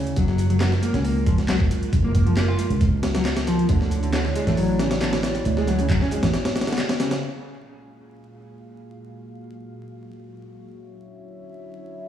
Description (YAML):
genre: breakbeat, breaks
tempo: 136 BPM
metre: 4/4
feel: straight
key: F# major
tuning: A4 = 440 Hz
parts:
  - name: dark analog pad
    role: sustained chords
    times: 0.0-12.1 s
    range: G#3 to E#5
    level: -32 LUFS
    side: right 2 dB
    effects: chorus, sidechain pumping
  - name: electric guitar at the edge of break-up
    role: riff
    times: 0.0-7.2 s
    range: C#3 to E#4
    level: -25 LUFS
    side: left 1 dB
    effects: tube saturation, dub echo
  - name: fingered electric bass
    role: bass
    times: 0.0-6.3 s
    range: F#1 to D2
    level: -22 LUFS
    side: equal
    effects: none
  - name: garage drum kit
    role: drums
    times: 0.1-7.2 s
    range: handclaps, hi-hat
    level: -35 LUFS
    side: equal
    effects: overdrive, low-pass filter on hats, low-pass filter on snare
  - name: breakbeat sampler-style drum kit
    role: drums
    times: 0.2-7.2 s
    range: hi-hat, kick drum, snare drum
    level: -24 LUFS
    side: equal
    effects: none
room: light reverb, digital ambience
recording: played on a big sound system in a bare room, stone room reverb, vinyl crackle, studio ambience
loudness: -19 LUFS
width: side -10 dB against mid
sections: 0.0-7.2 A section; 7.2-12.1 B section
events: break 6.3-7.2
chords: 0.2 F#maj9; 3.7 Dmaj9; 7.2 F#maj9; 10.8 Dmaj9